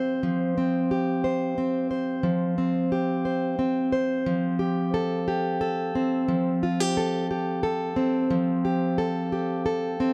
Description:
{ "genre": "pop", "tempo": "59 BPM (dotted quarters)", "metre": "6/8", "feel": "straight", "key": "F major", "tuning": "A4 = 440 Hz", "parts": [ { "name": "fingerpicked plugged-in steel-string acoustic guitar", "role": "solo", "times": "0.0-10.1 s", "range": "F3 to C5", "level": "-26 LUFS", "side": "equal", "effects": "analog delay" } ], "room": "light reverb", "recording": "dark, warm production", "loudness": "-26 LUFS", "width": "mono", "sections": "0.0-4.3 A section; 4.3-10.1 B section", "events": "none", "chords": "0.0 Csus4/F; 4.3 Fadd9" }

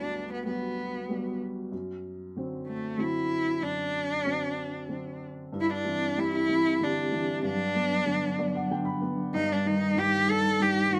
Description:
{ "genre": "acoustic folk-pop ballad", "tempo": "95 BPM", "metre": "3/4", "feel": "straight", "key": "G major", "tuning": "A4 = 440 Hz", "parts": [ { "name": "rich cello", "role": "melody", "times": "0.0-11.0 s", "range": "A3 to A4", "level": "-30 LUFS", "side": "equal", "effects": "none" }, { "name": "dark upright piano", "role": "accompaniment", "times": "0.0-11.0 s", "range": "D2 to B5", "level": "-36 LUFS", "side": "equal", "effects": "none" }, { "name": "vibraphone with medium mallets", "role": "arpeggios", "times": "5.5-11.0 s", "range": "F#3 to G4", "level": "-32 LUFS", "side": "equal", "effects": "none" } ], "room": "light reverb", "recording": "none", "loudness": "-29 LUFS", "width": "mono", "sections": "0.0-5.5 A section; 5.5-11.0 B section", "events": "none", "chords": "0.0 Gmaj7; 1.7 D7/F#; 5.5 Cadd9/G; 7.4 Gmaj7; 9.3 Ebmaj7/G" }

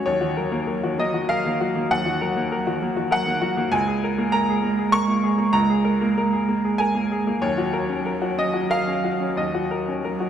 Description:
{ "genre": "neoclassical piano and strings", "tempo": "97 BPM", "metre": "3/4", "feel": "rubato", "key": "Eb minor", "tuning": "A4 = 439 Hz", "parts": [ { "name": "warm cello", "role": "second line", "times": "0.0-10.3 s", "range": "Eb3 to Ab3", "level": "-25 LUFS", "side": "right 5 dB", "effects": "slapback echo" }, { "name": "clear upright piano", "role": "accompaniment", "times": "0.0-10.3 s", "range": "Db2 to Db6", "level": "-21 LUFS", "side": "left 2 dB", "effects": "none" } ], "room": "wet scoring stage reverb, RT60 1.9 s", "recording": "none", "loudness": "-20 LUFS", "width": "side -9 dB against mid", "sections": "0.0-10.3 A section", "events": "none", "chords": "0.1 Ebm7; 3.7 Bbm7/Db; 7.4 Ebm7" }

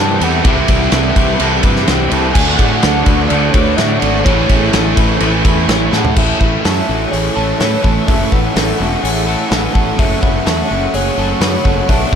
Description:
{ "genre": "rock, shoegaze and dream pop", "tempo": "126 BPM", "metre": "4/4", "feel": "straight", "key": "A major", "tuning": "A4 = 439 Hz", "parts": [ { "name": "warbly nostalgic lead", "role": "melody", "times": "0.0-12.2 s", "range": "C#5 to A5", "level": "-22 LUFS", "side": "equal", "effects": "chorus, tremolo, tape echo" }, { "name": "warm analog pad", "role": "sustained chords", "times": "0.0-12.2 s", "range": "A4 to D6", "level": "-27 LUFS", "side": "left 1 dB", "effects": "chorus" }, { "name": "electric guitar through a small old amp", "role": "arpeggios", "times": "0.0-12.1 s", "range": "F#4 to C#5", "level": "-24 LUFS", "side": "equal", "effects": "analog chorus, tape echo" }, { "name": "crunchy overdriven guitar", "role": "riff", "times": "0.0-12.2 s", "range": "F#2 to A4", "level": "-20 LUFS", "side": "right 12 dB", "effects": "reverse reverb" }, { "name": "distorted electric guitar", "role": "riff", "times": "0.0-6.2 s", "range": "A2 to D4", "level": "-21 LUFS", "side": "equal", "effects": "overdrive" }, { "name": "overdriven electric guitar", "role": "riff", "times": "0.0-12.2 s", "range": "F#2 to F#4", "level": "-20 LUFS", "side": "left 12 dB", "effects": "wide subtle chorus" }, { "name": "fuzz fingered electric bass", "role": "bass", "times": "0.0-12.2 s", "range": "E1 to A2", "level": "-18 LUFS", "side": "equal", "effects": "overdrive" }, { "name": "loose indie drum kit", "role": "drums", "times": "0.2-12.2 s", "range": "crash cymbal, hi-hat, kick drum, ride cymbal, snare drum, toms", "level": "-15 LUFS", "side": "equal", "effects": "none" } ], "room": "little or no reverb", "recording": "none", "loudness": "-11 LUFS", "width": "side -8 dB against mid", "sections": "0.0-6.2 A section; 6.2-12.2 B section", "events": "drum fill 5.9", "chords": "0.0 Cmaj9#11; 2.4 Dmaj7; 4.3 Amaj7; 6.2 A; 10.0 F#m" }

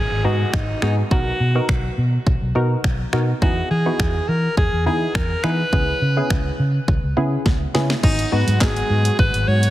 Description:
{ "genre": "dance-pop", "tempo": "104 BPM", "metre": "4/4", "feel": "straight", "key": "unclear", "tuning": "A4 = 441 Hz", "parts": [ { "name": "breathy alto saxophone", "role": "melody", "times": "0.0-9.7 s", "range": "D#4 to C#5", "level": "-24 LUFS", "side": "equal", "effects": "tape echo" }, { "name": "vintage muted fingered electric bass", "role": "bass", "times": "0.0-9.7 s", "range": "G#1 to E3", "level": "-20 LUFS", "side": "equal", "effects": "sidechain pumping" }, { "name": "downlifter", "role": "sound effects", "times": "0.0-3.4 s", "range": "none", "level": "-37 LUFS", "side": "equal", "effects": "none" }, { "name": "wavetable chord stab", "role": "accompaniment", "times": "0.2-9.3 s", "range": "B3 to B4", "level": "-25 LUFS", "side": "equal", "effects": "sidechain pumping" }, { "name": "house drum kit", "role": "drums", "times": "0.5-9.7 s", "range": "crash cymbal, finger snaps, handclaps, hi-hat, kick drum, snare drum", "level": "-21 LUFS", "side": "equal", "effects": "none" }, { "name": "soft supersaw", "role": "sustained chords", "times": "8.0-9.7 s", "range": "F#3 to F#4", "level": "-28 LUFS", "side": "right 1 dB", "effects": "sidechain pumping" } ], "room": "light reverb", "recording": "heavily compressed radio sound, multiband compression", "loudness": "-17 LUFS", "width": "side -14 dB against mid", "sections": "0.0-8.0 A section; 8.0-9.7 B section", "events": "drum fill 7.5-8.0", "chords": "0.0 G#m7; 1.1 Bmaj7; 3.4 Emaj7; 5.7 C#m7; 8.0 G#m7" }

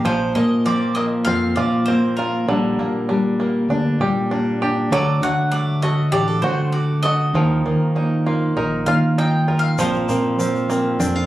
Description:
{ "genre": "acoustic folk duo or small band", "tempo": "99 BPM", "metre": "4/4", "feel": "straight", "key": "unclear", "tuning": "A4 = 441 Hz", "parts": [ { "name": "nylon-string guitar", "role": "accompaniment", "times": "0.0-11.3 s", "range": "Bb2 to Bb4", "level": "-21 LUFS", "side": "left 1 dB", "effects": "none" }, { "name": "bluegrass banjo", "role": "arpeggios", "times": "0.0-11.3 s", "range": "D3 to G4", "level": "-24 LUFS", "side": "right 2 dB", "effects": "none" }, { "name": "fingered electric bass", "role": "bass", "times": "0.0-11.3 s", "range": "A1 to Eb3", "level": "-22 LUFS", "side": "equal", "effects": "none" }, { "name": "bowl-back mandolin", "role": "melody", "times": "0.1-10.7 s", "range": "Bb4 to G5", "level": "-24 LUFS", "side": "right 1 dB", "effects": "none" }, { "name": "tube shaker", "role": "percussion", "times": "9.8-11.2 s", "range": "none", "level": "-34 LUFS", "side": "left 3 dB", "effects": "none" } ], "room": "moderate studio reverb, RT60 0.8 s", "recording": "recorded on a phone in the room, club reverb", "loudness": "-17 LUFS", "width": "side -14 dB against mid", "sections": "0.0-11.3 A section", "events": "mandolin solo 0.0-11.3", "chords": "0.0 Bbsus2; 2.5 Gm/Bb; 4.9 D; 7.4 Ebsus2; 9.8 Bbsus2" }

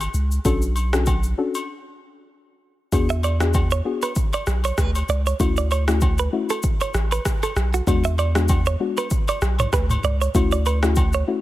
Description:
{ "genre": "afrobeats", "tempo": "97 BPM", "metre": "4/4", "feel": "swing 55% on 16ths", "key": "unclear", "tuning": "A4 = 436 Hz", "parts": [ { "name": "soft round pluck", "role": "accompaniment", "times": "0.0-11.4 s", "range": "G#3 to A4", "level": "-25 LUFS", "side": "left 5 dB", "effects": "chorus" }, { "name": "punchy sub bass", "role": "bass", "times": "0.0-11.2 s", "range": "A1 to E2", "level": "-21 LUFS", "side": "equal", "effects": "none" }, { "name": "afro-pop drum kit", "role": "drums", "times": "0.0-11.3 s", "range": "kick drum, rim click, shaker, toms", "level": "-23 LUFS", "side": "equal", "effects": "none" }, { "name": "agogo bells and woodblock", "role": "percussion", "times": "0.0-11.1 s", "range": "none", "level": "-32 LUFS", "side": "left 3 dB", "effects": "none" }, { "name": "direct-recorded clean electric guitar", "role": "riff", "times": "3.1-11.2 s", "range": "F#4 to E5", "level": "-26 LUFS", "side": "right 7 dB", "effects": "tape echo" } ], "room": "digital ambience", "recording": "none", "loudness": "-18 LUFS", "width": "side -15 dB against mid", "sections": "0.0-2.9 A section; 2.9-11.4 B section", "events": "break 1.7-2.9", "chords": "0.5 Bm7; 1.7 N.C.; 2.9 E7; 5.4 Dmaj7; 7.9 E7; 10.3 Dmaj7" }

